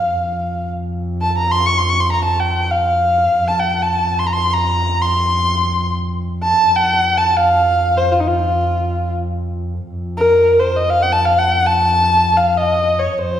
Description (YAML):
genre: Persian modal ensemble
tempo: free time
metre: none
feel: none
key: F dastgah homayun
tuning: A4 = 440 Hz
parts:
  - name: rich kamancheh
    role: melody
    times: 0.0-13.4 s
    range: Eb4 to Db6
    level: -14 LUFS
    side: equal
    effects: none
  - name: dark double bass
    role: drone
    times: 0.0-13.4 s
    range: F2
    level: -21 LUFS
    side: equal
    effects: none
room: wet recital hall reverb, RT60 1.7 s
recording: heard from further back in the room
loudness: -14 LUFS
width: side -10 dB against mid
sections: 0.0-9.9 A section; 9.9-13.4 A section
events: none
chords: none